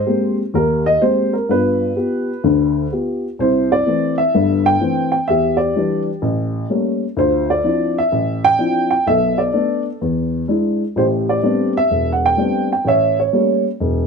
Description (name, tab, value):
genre	solo jazz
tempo	127 BPM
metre	4/4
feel	swing 66% on 8ths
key	C major from 3.4 s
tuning	A4 = 440 Hz
part	dark upright piano	solo	0.0-14.1 s	E1 to G5	-15 LUFS	equal	none
room	light reverb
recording	none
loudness	-15 LUFS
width	side -5 dB against mid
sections	0.0-3.4 A section; 3.4-14.1 B section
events	none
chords	0.0 Abmaj9; 1.5 G7; 3.4 C6; 5.3 Em7; 6.2 A7b9; 7.2 Dm9; 9.1 Bm7; 10.0 E7; 11.0 Am11; 12.8 A7b9